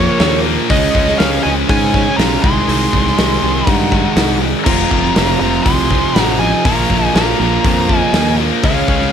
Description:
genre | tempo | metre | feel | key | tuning
hard rock | 121 BPM | 4/4 | straight | unclear | A4 = 439 Hz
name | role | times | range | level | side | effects
bluesy overdriven lead guitar | melody | 0.0-9.1 s | Db5 to C6 | -19 LUFS | equal | distortion, tape echo
octave-fuzz lead guitar | second line | 0.0-9.1 s | Ab3 to Ab4 | -25 LUFS | right 2 dB | distortion
distorted electric guitar | riff | 0.0-9.1 s | F2 to Db4 | -20 LUFS | left 14 dB | overdrive
heavy high-gain guitar | riff | 0.0-9.1 s | F2 to Db4 | -23 LUFS | left 2 dB | distortion
overdriven semi-hollow guitar | riff | 0.0-9.1 s | F2 to Db4 | -19 LUFS | right 11 dB | none
overdriven picked electric bass | bass | 0.0-9.1 s | F1 to Ab2 | -19 LUFS | left 1 dB | none
big rock drum kit | drums | 0.2-9.1 s | crash cymbal, hi-hat, kick drum, snare drum | -17 LUFS | equal | none
room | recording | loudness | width
light reverb | none | -11 LUFS | side -8 dB against mid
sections
0.0-9.1 A section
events
none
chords
0.0 Bbm; 0.7 Db; 2.4 Ab/C; 4.7 Fm; 6.7 Bbm

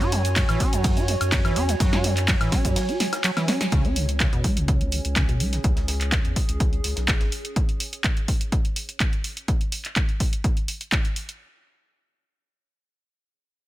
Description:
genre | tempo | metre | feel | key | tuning
acid house | 125 BPM | 4/4 | straight | C# minor | A4 = 440 Hz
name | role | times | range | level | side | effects
deep acid bass | riff | 0.0-5.6 s | B2 to F#4 | -27 LUFS | equal | overdrive, sidechain pumping, dub echo
saturated sub bass | bass | 0.0-7.3 s | G#1 to A2 | -26 LUFS | equal | sidechain pumping
punchy analog drum machine | drums | 0.0-11.4 s | cabasa, handclaps, hi-hat, ride cymbal, snare drum, woodblock | -27 LUFS | equal | none
warbly tape-like pad | texture | 0.0-9.5 s | C#4 to G#5 | -32 LUFS | right 3 dB | chorus, built-in reverb, sidechain pumping
deep reggae drum kit | drums | 0.1-7.4 s | hi-hat, shaker, snare drum | -41 LUFS | left 1 dB | none
electronic kick drum | drums | 0.4-11.0 s | none | -23 LUFS | equal | none
room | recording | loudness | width
little or no reverb | none | -21 LUFS | side -16 dB against mid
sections
0.0-3.7 A section; 3.7-11.4 B section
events
drop 0.0-3.7; break 2.8-3.7; drum fill 3.4-3.7; band accent 3.6; fade-out on ambient pad 3.7-9.5; filter sweep on acid bass 3.7-5.6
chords
0.0 F#7(no3); 3.7 C#5

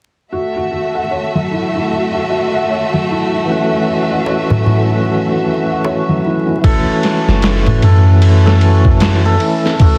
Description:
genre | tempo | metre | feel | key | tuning
trip hop | 76 BPM | 4/4 | swing 60% on 16ths | F# minor | A4 = 440 Hz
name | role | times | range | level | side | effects
warm symphonic violin section | sustained chords | 0.3-6.6 s | A3 to E5 | -21 LUFS | equal | none
felt-muted upright piano | arpeggios | 0.3-6.7 s | F#3 to F#5 | -22 LUFS | equal | low-pass filter, delay
percussive tonewheel organ | accompaniment | 3.5-10.0 s | E3 to F#4 | -19 LUFS | equal | slow rotary speaker, tremolo, vintage 12-bit sampler grit, tape echo
darbuka | percussion | 4.3-9.2 s | none | -19 LUFS | equal | none
hammered dulcimer | melody | 6.6-10.0 s | A4 | -23 LUFS | equal | tape echo
trip hop sampler-style drum kit | drums | 6.6-10.0 s | kick drum, ride cymbal, snare drum | -17 LUFS | equal | vintage 12-bit sampler grit
soft 808-style bass | bass | 7.3-9.4 s | F#1 to F#2 | -12 LUFS | equal | none
room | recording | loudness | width
light reverb, studio ambience | dense, heavily limited modern master, vinyl crackle | -14 LUFS | mono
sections
0.3-6.6 A section; 6.6-10.0 B section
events
filter sweep on felt piano 0.3-6.6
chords
0.3 F#m7

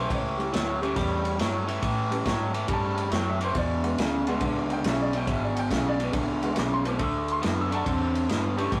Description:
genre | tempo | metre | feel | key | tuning
electric blues shuffle | 139 BPM | 4/4 | swing 67% on 8ths | A mixolydian | A4 = 440 Hz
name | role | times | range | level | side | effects
warm upright piano | accompaniment | 0.0-8.7 s | G3 to E6 | -35 LUFS | equal | none
crunchy overdriven guitar | riff | 0.0-8.8 s | E2 to C4 | -30 LUFS | equal | none
vintage muted fingered electric bass | bass | 0.0-8.8 s | G#1 to A2 | -34 LUFS | equal | none
crunchy breakbeat drum kit | drums | 0.1-8.8 s | kick drum, ride cymbal, snare drum | -34 LUFS | equal | none
room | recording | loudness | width
moderate studio ambience, RT60 0.5 s | rough rehearsal-room recording, warm saturation | -27 LUFS | mono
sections
0.0-8.8 A section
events
none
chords
0.0 A9; 3.6 E9; 7.0 D9

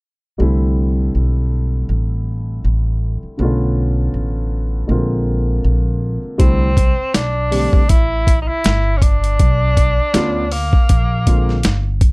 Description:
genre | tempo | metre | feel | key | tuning
hip hop, jazz-hop | 80 BPM | 4/4 | swing 57% on 16ths | C major | A4 = 441 Hz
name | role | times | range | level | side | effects
dark upright piano | accompaniment | 0.4-11.6 s | Db3 to G4 | -21 LUFS | equal | none
upright bass | bass | 0.4-12.1 s | G1 to D2 | -17 LUFS | equal | none
warm tenor saxophone | melody | 6.4-12.0 s | Bb3 to E4 | -20 LUFS | equal | none
boom bap sampler-style drum kit | drums | 6.4-12.1 s | hi-hat, kick drum, snare drum | -14 LUFS | equal | none
room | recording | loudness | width
little or no reverb | dark, warm production | -14 LUFS | side -28 dB against mid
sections
0.4-6.4 A section; 6.4-12.1 B section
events
none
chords
0.4 C69; 3.4 Bm7b5; 4.9 Bb9; 6.4 C69; 9.4 Bm7b5; 10.9 Bb9

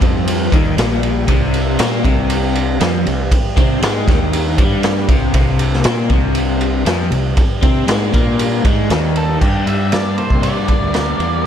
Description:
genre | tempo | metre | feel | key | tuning
psychedelic rock | 118 BPM | 4/4 | straight | unclear | A4 = 441 Hz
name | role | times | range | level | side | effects
crunchy overdriven guitar | riff | 0.0-11.5 s | G2 to Bb4 | -18 LUFS | left 2 dB | tremolo
fuzz fingered electric bass | bass | 0.0-11.5 s | Bb1 to C3 | -20 LUFS | equal | overdrive
pedal harmonium | drone | 0.0-9.5 s | G2 to G3 | -26 LUFS | left 1 dB | none
raw garage drum kit | drums | 0.0-11.3 s | crash cymbal, kick drum, ride cymbal, snare drum | -16 LUFS | equal | none
octave-fuzz lead guitar | melody | 9.2-11.5 s | G4 to E5 | -22 LUFS | right 1 dB | distortion, tape echo
room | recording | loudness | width
light reverb, studio ambience | none | -13 LUFS | side -9 dB against mid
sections
0.0-9.4 A section; 9.4-11.5 B section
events
none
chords
0.0 Gm; 1.3 C5; 9.4 Gm

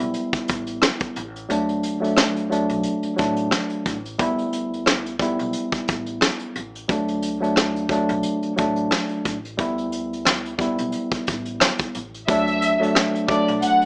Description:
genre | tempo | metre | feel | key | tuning
hip hop, boom-bap hip-hop | 89 BPM | 4/4 | swing 55% on 16ths | D major | A4 = 440 Hz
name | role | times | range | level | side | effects
mellow tine electric piano | accompaniment | 0.0-13.9 s | F#3 to E4 | -25 LUFS | equal | cassette tape, high-pass filter, low-pass filter
upright bass | bass | 0.0-13.8 s | A1 to D2 | -38 LUFS | equal | none
vintage brush drum kit | drums | 0.0-13.9 s | hi-hat, kick drum, rim click, snare drum | -24 LUFS | equal | none
rich studio violin section | melody | 12.3-13.9 s | D5 to F#5 | -23 LUFS | equal | high-pass filter, low-pass filter
room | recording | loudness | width
light reverb | small speaker sound | -23 LUFS | mono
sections
0.0-12.3 A section; 12.3-13.9 B section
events
kick muted 1.5-2.8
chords
0.0 Em; 1.5 D; 4.2 Em; 6.9 D; 9.6 Em; 12.3 D

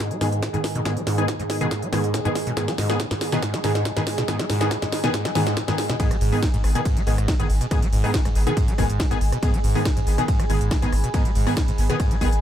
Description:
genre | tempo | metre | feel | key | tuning
driving peak-time techno | 140 BPM | 4/4 | straight | G# minor | A4 = 439 Hz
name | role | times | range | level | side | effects
overdriven acid bass | riff | 0.0-12.2 s | G#2 to G#3 | -26 LUFS | equal | distortion, wide subtle chorus, sidechain pumping, tape echo
analog drone | drone | 0.0-6.0 s | G#2 to D#3 | -34 LUFS | equal | none
electronic kick drum | drums | 0.0-12.3 s | none | -23 LUFS | equal | high-pass filter on kick, high-pass filter on room
techno drum kit | drums | 0.0-12.4 s | hi-hat, ride cymbal, rim click, snare drum | -29 LUFS | equal | sidechain pumping on hats, sidechain pumping on cymbals
deep dark ambient pad | texture | 0.0-12.4 s | G#4 to B5 | -31 LUFS | right 2 dB | chorus, built-in reverb, sidechain pumping
rave stab | stabs | 0.2-12.3 s | D#3 to G#4 | -27 LUFS | left 1 dB | chorus, built-in reverb, sidechain pumping, tape echo
saturated sub bass | bass | 6.1-12.4 s | G#1 | -24 LUFS | equal | sidechain pumping, low-pass filter
room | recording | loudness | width
light reverb | echo-heavy mix | -20 LUFS | side -10 dB against mid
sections
0.0-6.0 A section; 6.0-12.4 B section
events
build-up 0.0-6.0; drum fill 0.0-6.0; filter sweep on acid bass 0.0-6.0; drop 6.0-12.4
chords
0.0 G#m

